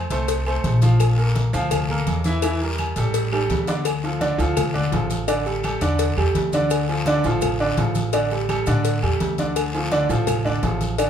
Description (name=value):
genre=latin, salsa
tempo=168 BPM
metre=4/4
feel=straight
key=D minor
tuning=A4 = 440 Hz
part: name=bright concert grand piano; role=accompaniment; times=0.0-11.1 s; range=D3 to F5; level=-23 LUFS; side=right 2 dB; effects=none
part: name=upright bass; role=bass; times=0.0-11.1 s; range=A1 to A2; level=-22 LUFS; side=equal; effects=none
part: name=congas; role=percussion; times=0.1-11.1 s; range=none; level=-29 LUFS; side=equal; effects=none
part: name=cowbell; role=percussion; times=0.1-11.1 s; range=none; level=-29 LUFS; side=left 8 dB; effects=none
part: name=guiro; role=percussion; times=0.1-11.1 s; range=none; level=-36 LUFS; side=left 3 dB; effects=none
part: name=maracas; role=percussion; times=0.1-11.1 s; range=none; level=-39 LUFS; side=right 5 dB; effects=none
part: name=agogo bells and timbales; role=percussion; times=0.3-11.1 s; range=none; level=-32 LUFS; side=right 1 dB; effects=none
part: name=claves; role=percussion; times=0.5-11.1 s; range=none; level=-38 LUFS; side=equal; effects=none
room=moderate large studio reverb, RT60 0.8 s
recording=band playing live in one room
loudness=-19 LUFS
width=side -8 dB against mid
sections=0.0-3.9 A section; 3.9-11.1 B section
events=drum fill 3.3-3.9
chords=0.0 F; 1.0 Bbmaj7; 2.4 Edim; 3.1 A7sus4; 3.9 Dm; 5.3 A7sus4; 6.7 Dm; 8.1 A7sus4; 9.6 Dm